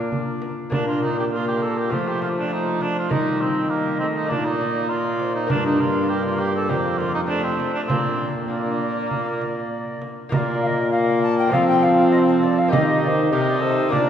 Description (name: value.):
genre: classical, renaissance-style consort dance.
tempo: 100 BPM.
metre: 4/4.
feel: straight.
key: Bb major.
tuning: A4 = 439 Hz.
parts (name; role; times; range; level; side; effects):
mellow alto recorder; melody; 0.0-14.1 s; Bb4 to A5; -26 LUFS; left 2 dB; none.
warm cor anglais; second line; 0.0-14.1 s; Bb3 to Bb4; -26 LUFS; right 2 dB; none.
lute; accompaniment; 0.0-14.1 s; F2 to D5; -27 LUFS; left 3 dB; none.
rich viola; accompaniment; 0.0-14.1 s; G3 to Eb4; -27 LUFS; right 1 dB; none.
clear trombone; bass; 0.0-14.1 s; F2 to F3; -24 LUFS; equal; none.
frame drum; percussion; 0.1-14.1 s; none; -29 LUFS; right 1 dB; none.
room: wet church reverb, RT60 3.7 s.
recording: heard from further back in the room.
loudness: -19 LUFS.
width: side -9 dB against mid.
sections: 0.7-10.3 A section; 10.3-14.1 A section.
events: none.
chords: 0.0 Bb; 1.9 F; 3.1 Eb; 4.3 Bb; 5.5 Gm; 6.7 Fsus4; 7.3 F; 7.9 Bb; 10.3 Bb5; 11.5 F; 12.7 Eb.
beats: 0.11 | 0.72 1.32 1.92 2.52 | 3.12 3.71 4.31 4.91 | 5.51 6.10 6.70 7.30 | 7.90 8.51 9.11 9.72 | 10.32 10.93 11.53 12.12 | 12.72 13.32 13.92.